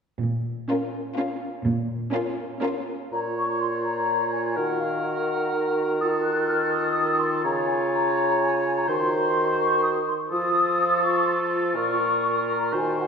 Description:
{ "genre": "cinematic, playful, whimsical film cue", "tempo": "125 BPM", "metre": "3/4", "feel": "straight", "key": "Bb minor", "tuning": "A4 = 439 Hz", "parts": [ { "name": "warm studio cello section", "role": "bass", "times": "0.2-2.0 s", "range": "Bb2", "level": "-27 LUFS", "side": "right 2 dB", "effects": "none" }, { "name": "dark studio violin section", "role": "melody", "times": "0.7-3.0 s", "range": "Bb4", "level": "-33 LUFS", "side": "left 4 dB", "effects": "none" }, { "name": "rich symphonic violin section", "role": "second line", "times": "0.7-3.0 s", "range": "F4", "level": "-33 LUFS", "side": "left 2 dB", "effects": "none" }, { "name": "warm studio viola section", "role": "accompaniment", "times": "0.7-3.0 s", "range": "Db4", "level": "-30 LUFS", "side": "right 2 dB", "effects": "none" }, { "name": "mellow large flute ensemble", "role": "second line", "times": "3.1-13.1 s", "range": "F5 to Gb6", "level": "-25 LUFS", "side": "left 2 dB", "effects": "none" }, { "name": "warm clarinet", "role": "second line", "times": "3.1-13.1 s", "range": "F4 to Gb4", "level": "-30 LUFS", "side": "equal", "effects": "none" }, { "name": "warm oboe", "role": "second line", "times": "3.1-13.1 s", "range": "A4 to Db5", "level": "-29 LUFS", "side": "right 1 dB", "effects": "none" }, { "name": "mellow bassoon", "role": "accompaniment", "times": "3.1-13.1 s", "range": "Bb2 to F3", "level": "-26 LUFS", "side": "right 1 dB", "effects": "none" } ], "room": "wet scoring stage reverb, RT60 1.8 s", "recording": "none", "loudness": "-22 LUFS", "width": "side -6 dB against mid", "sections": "0.2-3.1 A section; 3.1-13.1 B section", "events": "none", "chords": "0.2 Bbm; 4.6 Ebm; 7.5 Bbm/Db; 8.9 Cdim/Eb; 10.3 F7; 11.8 Bbm" }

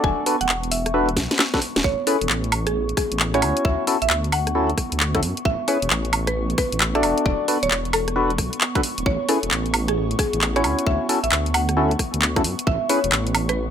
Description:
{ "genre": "UK garage, two-step garage", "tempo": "133 BPM", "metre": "4/4", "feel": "swing 64% on 16ths", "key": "A major", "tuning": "A4 = 442 Hz", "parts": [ { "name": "mallet-like synth pluck", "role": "melody", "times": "0.0-13.6 s", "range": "G#4 to G#5", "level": "-26 LUFS", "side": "equal", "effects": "chorus, ping-pong delay" }, { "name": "airy breathy pad", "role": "sustained chords", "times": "0.0-13.7 s", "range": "B3 to C#6", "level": "-31 LUFS", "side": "right 1 dB", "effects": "chorus, sidechain pumping" }, { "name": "percussive organ stab", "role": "stabs", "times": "0.0-13.0 s", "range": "C#4 to D5", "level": "-23 LUFS", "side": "left 1 dB", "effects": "chorus, cassette tape, ping-pong delay" }, { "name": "dark detuned saw bass", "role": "bass", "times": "0.0-13.7 s", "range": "D1 to F#2", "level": "-25 LUFS", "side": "equal", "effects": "none" }, { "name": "electronic kick drum", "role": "drums", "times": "0.0-12.8 s", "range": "none", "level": "-26 LUFS", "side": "equal", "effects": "none" }, { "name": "garage drum kit", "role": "drums", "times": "0.3-13.6 s", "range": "handclaps, hi-hat, rim click, snare drum, woodblock", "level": "-22 LUFS", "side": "equal", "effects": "none" } ], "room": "moderate studio reverb, RT60 0.6 s", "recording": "none", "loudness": "-18 LUFS", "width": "side -8 dB against mid", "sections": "0.0-13.7 A section", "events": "drum fill 1.2-1.8", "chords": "0.0 E7sus4; 1.8 Amaj9; 3.4 Dmaj9; 5.5 Amaj9; 7.0 E7sus4; 9.1 Amaj9; 10.6 Dmaj9; 12.7 Amaj9" }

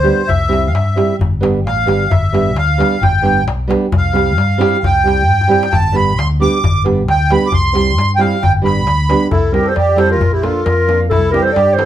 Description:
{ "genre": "balkan folk, Balkan wedding band", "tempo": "133 BPM", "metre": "2/4", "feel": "swing 54% on 16ths", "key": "G mixolydian", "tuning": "A4 = 442 Hz", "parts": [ { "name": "accordion", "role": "second line", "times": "0.0-11.9 s", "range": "E4 to D6", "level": "-16 LUFS", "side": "right 1 dB", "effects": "light tremolo tuning" }, { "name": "nylon-string guitar", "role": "accompaniment", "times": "0.0-11.9 s", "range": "E3 to G4", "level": "-17 LUFS", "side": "right 3 dB", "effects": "none" }, { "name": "fingered electric bass", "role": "bass", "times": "0.0-11.9 s", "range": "G1 to G2", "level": "-17 LUFS", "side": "left 1 dB", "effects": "none" }, { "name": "darbuka", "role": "percussion", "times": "0.3-11.9 s", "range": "none", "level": "-19 LUFS", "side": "left 2 dB", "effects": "none" }, { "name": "dark clarinet", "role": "melody", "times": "9.3-11.9 s", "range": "G4 to D5", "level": "-14 LUFS", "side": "equal", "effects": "none" } ], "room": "wet studio reverb, RT60 0.6 s", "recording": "heard from further back in the room", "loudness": "-11 LUFS", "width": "side -11 dB against mid", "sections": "0.0-9.3 A section; 9.3-11.9 B section", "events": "accordion solo 0.0-9.3; drum fill 5.3-5.7", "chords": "0.3 C; 1.2 G; 3.9 C; 5.7 G; 7.5 C; 8.4 G; 9.3 C; 10.2 Bb; 11.1 C" }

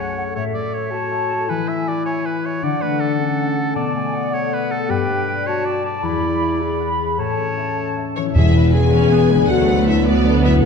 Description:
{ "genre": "cinematic, heroic adventure film score", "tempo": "105 BPM (dotted quarters)", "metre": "6/8", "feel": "straight", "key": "E mixolydian", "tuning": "A4 = 439 Hz", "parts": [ { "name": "bright oboe", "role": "second line", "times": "0.0-8.1 s", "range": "A4 to E5", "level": "-26 LUFS", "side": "right 2 dB", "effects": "none" }, { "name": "dark clarinet", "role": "second line", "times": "0.0-8.2 s", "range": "B3 to A4", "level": "-25 LUFS", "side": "equal", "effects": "none" }, { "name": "large flute ensemble", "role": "second line", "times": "0.0-8.2 s", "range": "E5 to B5", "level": "-26 LUFS", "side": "equal", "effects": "none" }, { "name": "concert harp", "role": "arpeggios", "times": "0.0-10.7 s", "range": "E2 to D6", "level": "-24 LUFS", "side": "left 8 dB", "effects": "none" }, { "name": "warm symphonic violin section", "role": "second line", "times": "8.2-10.5 s", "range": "C#5 to G#5", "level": "-25 LUFS", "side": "left 3 dB", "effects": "none" }, { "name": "mellow French horn section", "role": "sustained chords", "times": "8.2-10.6 s", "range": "C#4 to G#4", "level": "-19 LUFS", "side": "left 6 dB", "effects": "none" }, { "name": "rich studio violin section", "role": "melody", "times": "8.4-10.7 s", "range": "G#4 to B4", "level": "-28 LUFS", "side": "left 3 dB", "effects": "none" }, { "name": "clear trombone section", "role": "sustained chords", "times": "8.4-10.7 s", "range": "E3 to B3", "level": "-22 LUFS", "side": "right 4 dB", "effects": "none" }, { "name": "rich symphonic double bass section", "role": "bass", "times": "8.4-10.7 s", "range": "E1 to D2", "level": "-20 LUFS", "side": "right 2 dB", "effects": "none" }, { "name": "warm studio cello section", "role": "bass", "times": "8.4-10.6 s", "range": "D2 to E2", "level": "-21 LUFS", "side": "right 1 dB", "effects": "none" }, { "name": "timpani", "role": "percussion", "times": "8.4-8.9 s", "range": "E2", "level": "-17 LUFS", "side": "equal", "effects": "none" }, { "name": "rich chamber viola section", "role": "accompaniment", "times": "8.9-10.7 s", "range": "G#3 to C#4", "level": "-20 LUFS", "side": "right 1 dB", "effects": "none" } ], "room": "wet scoring stage reverb, RT60 1.6 s", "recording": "dark, warm production", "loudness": "-16 LUFS", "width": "side -6 dB against mid", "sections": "0.0-8.4 A section; 8.4-10.7 B section", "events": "build-up 0.0-8.4", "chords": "0.4 A; 1.5 Esus2; 2.6 D; 3.8 Bm7; 4.9 G; 6.0 Esus2; 7.2 A; 8.4 E; 9.5 D6" }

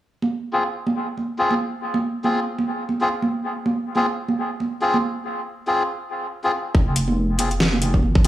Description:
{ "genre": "deep dubstep", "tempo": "140 BPM", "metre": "4/4", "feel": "swing 57% on 16ths, half-time", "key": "F minor", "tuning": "A4 = 440 Hz", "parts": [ { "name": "congas", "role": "percussion", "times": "0.2-8.2 s", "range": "none", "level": "-24 LUFS", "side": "right 2 dB", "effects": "dub echo" }, { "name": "melodica", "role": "stabs", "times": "0.5-8.3 s", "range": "C4 to Ab4", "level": "-24 LUFS", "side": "left 1 dB", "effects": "low-pass filter, dub echo" }, { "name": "deep soft wobble bass", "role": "bass", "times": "6.7-8.3 s", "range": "F1 to Ab1", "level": "-22 LUFS", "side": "equal", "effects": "chorus, tube saturation" }, { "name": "electronic kick drum", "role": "drums", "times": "6.7-8.2 s", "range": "none", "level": "-18 LUFS", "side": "equal", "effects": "overdrive" }, { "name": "dubstep drum kit", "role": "drums", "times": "7.0-8.3 s", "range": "hi-hat, snare drum", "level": "-21 LUFS", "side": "equal", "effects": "overdrive" } ], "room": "light reverb, digital ambience", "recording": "dry, gritty hardware recording, studio reverb", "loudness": "-20 LUFS", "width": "side -13 dB against mid", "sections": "0.0-6.7 A section; 6.7-8.3 B section", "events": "break 5.0-6.7", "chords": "0.0 Fm" }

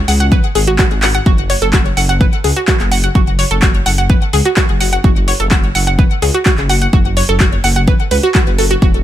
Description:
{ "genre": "progressive house", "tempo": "127 BPM", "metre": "4/4", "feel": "straight", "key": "unclear", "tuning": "A4 = 441 Hz", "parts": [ { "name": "dark detuned saw bass", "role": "bass", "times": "0.0-9.0 s", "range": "E1 to C#2", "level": "-16 LUFS", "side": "equal", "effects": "sidechain pumping" }, { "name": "analog pluck", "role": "arpeggios", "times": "0.1-8.9 s", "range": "F#4 to F#5", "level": "-16 LUFS", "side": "right 1 dB", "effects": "chorus, sidechain pumping, ping-pong delay" }, { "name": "pop drum kit", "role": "drums", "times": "0.1-9.0 s", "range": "handclaps, hi-hat", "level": "-19 LUFS", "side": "right 1 dB", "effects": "overdrive" }, { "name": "electronic kick drum", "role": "drums", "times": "0.3-8.9 s", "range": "none", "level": "-12 LUFS", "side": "equal", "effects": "overdrive" } ], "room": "little or no reverb", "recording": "none", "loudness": "-10 LUFS", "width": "side -12 dB against mid", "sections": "0.0-9.0 A section", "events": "drum fill 1.0", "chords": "0.0 C#5; 1.3 N.C." }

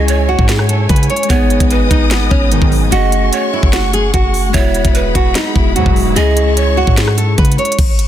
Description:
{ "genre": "hip hop, trap", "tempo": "148 BPM", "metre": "4/4", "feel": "half-time", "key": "unclear", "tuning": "A4 = 440 Hz", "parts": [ { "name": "nylon-string guitar", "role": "melody", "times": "0.0-7.8 s", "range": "B3 to C#5", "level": "-17 LUFS", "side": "right 1 dB", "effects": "ping-pong delay" }, { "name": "breathy mellow large pan pipes", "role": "second line", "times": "0.0-6.9 s", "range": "B4 to D#5", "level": "-22 LUFS", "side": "right 5 dB", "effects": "ping-pong delay" }, { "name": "mellow tine electric piano", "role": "accompaniment", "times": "0.0-7.8 s", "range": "G#3 to G#4", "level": "-21 LUFS", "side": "left 1 dB", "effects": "medium stereo tremolo, low-pass filter" }, { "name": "warm symphonic string section", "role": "sustained chords", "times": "0.0-7.8 s", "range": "A3 to D#6", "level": "-23 LUFS", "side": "left 2 dB", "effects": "none" }, { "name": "warm 808-style bass", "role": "bass", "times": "0.0-8.1 s", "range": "E1 to C#3", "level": "-15 LUFS", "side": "equal", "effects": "none" }, { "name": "trap drum kit", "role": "drums", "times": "0.1-8.1 s", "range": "crash cymbal, hi-hat, kick drum, rim click, snare drum", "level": "-14 LUFS", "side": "equal", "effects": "none" }, { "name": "analog synth brass", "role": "stabs", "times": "2.5-2.9, 5.8-6.1 s", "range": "B1 to F#3", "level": "-21 LUFS", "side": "left 1 dB", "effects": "chorus, ping-pong delay" } ], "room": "little or no reverb", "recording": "dense, heavily limited modern master", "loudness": "-10 LUFS", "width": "side -11 dB against mid", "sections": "0.0-7.8 A section", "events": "none", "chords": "0.0 C#m; 1.3 G#m; 2.9 F#madd9; 4.5 Eadd9; 6.2 C#m" }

